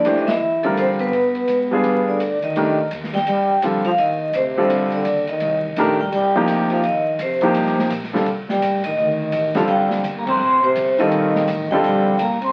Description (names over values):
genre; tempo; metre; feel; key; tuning
modal jazz; 168 BPM; 4/4; swing 63% on 8ths; C dorian; A4 = 441 Hz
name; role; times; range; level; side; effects
vibraphone with medium hard mallets; melody; 0.0-12.5 s; A4 to C6; -22 LUFS; equal; none
breathy trombone; second line; 0.0-12.5 s; C3 to E4; -26 LUFS; equal; none
clear concert grand piano; accompaniment; 0.0-12.2 s; C3 to C5; -22 LUFS; equal; none
upright bass; bass; 0.0-12.5 s; G1 to C3; -36 LUFS; equal; none
open jazz drum kit; drums; 0.0-12.5 s; crash cymbal, hi-hat, kick drum, ride cymbal, snare drum; -33 LUFS; equal; none
room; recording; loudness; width
wet studio reverb, RT60 0.5 s; very old 78 rpm record, vinyl crackle, nothing above 10.4 kHz; -19 LUFS; mono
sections
0.0-2.6 A section; 2.6-12.5 B section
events
band accent 0.2, 10.2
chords
0.0 Am; 1.1 G7b9; 2.6 Cm69; 5.4 Eb; 8.3 Cm69; 11.1 Eb